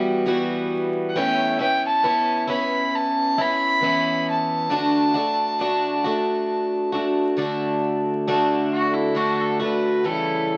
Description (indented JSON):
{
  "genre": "acoustic folk duo or small band",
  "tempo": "68 BPM",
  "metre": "4/4",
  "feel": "straight",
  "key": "D major",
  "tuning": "A4 = 440 Hz",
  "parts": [
    { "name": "picked plugged-in twelve-string acoustic guitar", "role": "accompaniment", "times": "0.0-10.6 s", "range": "A2 to F#4", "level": "-24 LUFS", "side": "equal", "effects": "none" },
    { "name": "dark fiddle", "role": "melody", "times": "1.1-10.5 s", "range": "E4 to B5", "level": "-25 LUFS", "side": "equal", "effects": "none" },
    { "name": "pedal harmonium", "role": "sustained chords", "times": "8.3-10.6 s", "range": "C#3 to A4", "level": "-30 LUFS", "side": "equal", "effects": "none" }
  ],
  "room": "wet studio reverb, RT60 0.6 s",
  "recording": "very old 78 rpm record, vinyl crackle",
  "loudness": "-22 LUFS",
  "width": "mono",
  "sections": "0.0-8.3 A section; 8.3-10.6 B section",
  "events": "fiddle solo 8.3-10.6",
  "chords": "0.0 Emadd9; 1.2 Aadd9; 4.7 D; 10.1 A7"
}